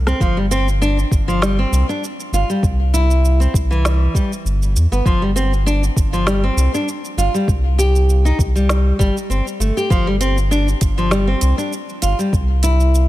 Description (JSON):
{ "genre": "organic downtempo", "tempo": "99 BPM", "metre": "4/4", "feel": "swing 54% on 16ths", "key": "unclear", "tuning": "A4 = 441 Hz", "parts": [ { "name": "round analog bass", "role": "bass", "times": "0.0-13.1 s", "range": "G1 to E2", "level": "-16 LUFS", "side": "equal", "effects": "sidechain pumping" }, { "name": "nylon-string guitar", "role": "arpeggios", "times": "0.1-13.1 s", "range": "E3 to G4", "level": "-20 LUFS", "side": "equal", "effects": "ping-pong delay" }, { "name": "organic electronic drum kit", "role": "drums", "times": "0.1-13.1 s", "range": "hi-hat, rim click, shaker, snare drum", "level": "-25 LUFS", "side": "right 1 dB", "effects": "none" }, { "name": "electronic kick drum", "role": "drums", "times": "0.2-12.5 s", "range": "none", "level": "-17 LUFS", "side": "equal", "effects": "none" } ], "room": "digital ambience", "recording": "none", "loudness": "-14 LUFS", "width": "side -16 dB against mid", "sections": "0.2-13.1 A section", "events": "drum fill 0.0", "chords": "0.2 G7sus4; 2.6 C; 5.1 G7sus4; 7.5 C5; 9.9 G7sus4; 12.3 C" }